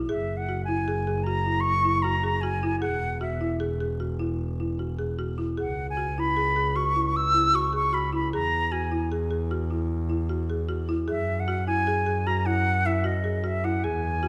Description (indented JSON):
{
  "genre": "contemporary instrumental, chamber music in an uneven meter",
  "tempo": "153 BPM",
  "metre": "7/4",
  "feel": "straight",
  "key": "unclear",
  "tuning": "A4 = 440 Hz",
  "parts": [
    { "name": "folk marimba with medium mallets", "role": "arpeggios", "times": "0.0-14.3 s", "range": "E4 to G#4", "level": "-33 LUFS", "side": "equal", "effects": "none" },
    { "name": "rich double bass", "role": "bass", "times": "0.0-14.3 s", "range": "E1 to F#2", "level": "-31 LUFS", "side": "equal", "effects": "none" },
    { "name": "concert flute", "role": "melody", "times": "0.1-14.3 s", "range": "D#5 to E6", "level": "-28 LUFS", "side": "equal", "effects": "none" }
  ],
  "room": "moderate recital hall reverb, RT60 1.5 s",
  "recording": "none",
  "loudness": "-26 LUFS",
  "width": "mono",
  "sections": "0.0-14.3 A section",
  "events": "none",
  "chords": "0.1 F#7; 2.8 Eadd9; 5.6 C#m; 8.3 E; 11.1 F#7sus2"
}